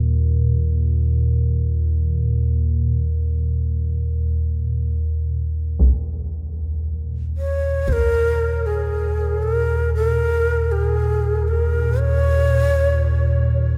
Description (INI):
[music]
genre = dark ambient drone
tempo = free time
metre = none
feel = none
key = unclear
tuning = A4 = 442 Hz
[part]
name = deep rumbling drone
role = drone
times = 0.0-13.8 s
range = Eb2 to Bb2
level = -21 LUFS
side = equal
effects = built-in reverb, phaser
[part]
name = bronze singing bowl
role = texture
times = 0.0-5.8 s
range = Bb4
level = -48 LUFS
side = equal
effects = none
[part]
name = taiko ensemble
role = percussion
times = 5.8-8.1 s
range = none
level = -26 LUFS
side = equal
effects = low-pass filter on perc
[part]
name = breathy long shakuhachi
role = melody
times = 7.4-13.5 s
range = Ab4 to Db5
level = -24 LUFS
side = equal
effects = delay
[sound]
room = wet cathedral reverb, RT60 6.2 s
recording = in a vast, echoing space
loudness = -20 LUFS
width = mono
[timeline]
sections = 0.0-5.8 A section; 5.8-13.8 B section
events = none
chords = 0.0 Eb5